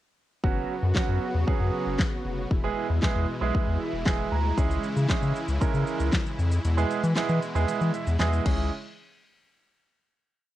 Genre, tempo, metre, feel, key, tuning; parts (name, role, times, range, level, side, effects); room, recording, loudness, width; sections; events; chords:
dance-pop; 116 BPM; 4/4; straight; A4 = 440 Hz
clear concert grand piano; accompaniment; 0.4-8.7 s; F#3 to A#5; -30 LUFS; right 7 dB; sidechain pumping, cassette tape
supersaw chords; sustained chords; 0.4-8.7 s; B2 to F#4; -33 LUFS; left 1 dB; sidechain pumping, cassette tape
round analog bass; bass; 0.4-8.7 s; E1 to E3; -26 LUFS; left 1 dB; sidechain pumping
pop drum kit; drums; 0.4-8.6 s; crash cymbal, handclaps, hi-hat, kick drum, shaker, snare drum; -27 LUFS; left 1 dB; cassette tape
digital ambience; home recording on cassette; -23 LUFS; side -14 dB against mid
0.4-8.7 bridge; 8.7-10.6 final hit
grand piano fill 3.5-4.6, 7.7-8.7; kick muted 6.6-8.7
0.4 F#sus4; 2.5 E; 4.6 C#m; 6.6 E; 8.5 C#m; 8.7 N.C.